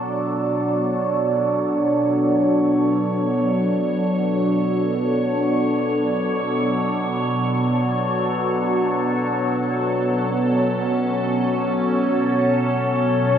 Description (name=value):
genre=ambient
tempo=free time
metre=none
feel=none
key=B minor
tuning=A4 = 439 Hz
part: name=evolving wavetable pad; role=sustained chords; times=0.0-13.4 s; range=B2 to C#5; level=-18 LUFS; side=equal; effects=phaser, built-in reverb, shimmer reverb
part: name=analog drone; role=drone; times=0.0-13.4 s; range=B3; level=-30 LUFS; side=equal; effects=none
room=wet huge ambient reverb, RT60 9.4 s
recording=small room ambience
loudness=-18 LUFS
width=side -8 dB against mid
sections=0.0-13.4 A section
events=none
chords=0.0 Bm7; 9.2 F#m/B